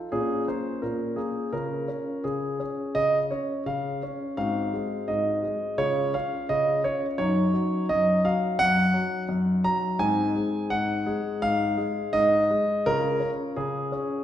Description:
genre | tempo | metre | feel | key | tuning
classical-period piano sonatina | 85 BPM | 4/4 | rubato | unclear | A4 = 440 Hz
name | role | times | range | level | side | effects
warm concert grand piano | solo | 0.0-14.2 s | Gb2 to Bb5 | -23 LUFS | equal | none
room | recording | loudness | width
wet recital hall reverb, RT60 1.6 s | heard from further back in the room | -23 LUFS | side -11 dB against mid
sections
0.0-14.2 A section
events
none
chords
0.1 Bbm; 1.5 Db; 4.4 Ab7; 5.8 Db; 7.2 Ebm7/Gb; 10.0 Ab; 12.8 Db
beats
0.13 0.83 | 1.53 2.24 2.96 3.67 | 4.38 5.08 5.79 6.50 | 7.20 7.90 8.60 9.30 | 10.00 10.71 11.42 12.13 | 12.85 13.57

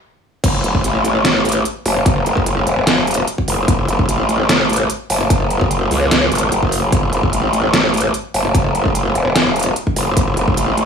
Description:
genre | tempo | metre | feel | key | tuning
heavy wobble dubstep | 148 BPM | 4/4 | half-time | F# minor | A4 = 440 Hz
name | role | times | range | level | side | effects
growl bass | bass | 0.4-10.9 s | E1 to C#2 | -16 LUFS | equal | chorus, overdrive
dubstep drum kit | drums | 0.4-10.9 s | crash cymbal, hi-hat, snare drum | -18 LUFS | equal | small room ambience
electronic kick drum | drums | 0.4-10.6 s | none | -18 LUFS | equal | small room ambience
room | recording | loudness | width
little or no reverb | high-pass filter, studio ambience | -14 LUFS | side -6 dB against mid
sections
0.4-10.9 A section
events
stop 0.0-0.4; drop 0.4-10.9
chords
none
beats
0.03 | 0.44 0.84 1.25 1.65 | 2.06 2.46 2.87 3.27 | 3.68 4.09 4.49 4.90 | 5.30 5.71 6.11 6.52 | 6.92 7.33 7.73 8.14 | 8.54 8.95 9.36 9.76 | 10.17 10.57

